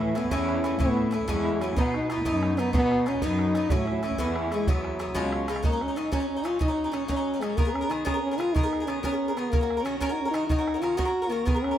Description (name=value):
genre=celtic folk, Celtic jig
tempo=124 BPM (dotted quarters)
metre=6/8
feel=straight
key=F# major from 5.6 s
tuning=A4 = 440 Hz
part: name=mellow French horn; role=melody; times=0.0-11.8 s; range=E3 to F#4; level=-27 LUFS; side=equal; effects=none
part: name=Irish bouzouki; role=accompaniment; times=0.0-11.8 s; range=G#2 to A#4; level=-31 LUFS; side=equal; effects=none
part: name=rich cello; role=bass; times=0.0-5.6 s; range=C#2 to B2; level=-30 LUFS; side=left 1 dB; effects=none
part: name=bodhran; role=percussion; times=0.0-11.7 s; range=none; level=-29 LUFS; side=right 1 dB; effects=none
room=light reverb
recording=band playing live in one room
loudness=-24 LUFS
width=side -11 dB against mid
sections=0.0-5.6 A section; 5.6-11.8 B section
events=none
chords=0.0 A; 1.8 B; 3.7 A; 4.7 Eadd9; 5.2 C#7; 5.6 F#6; 7.6 G#madd9; 9.5 F#6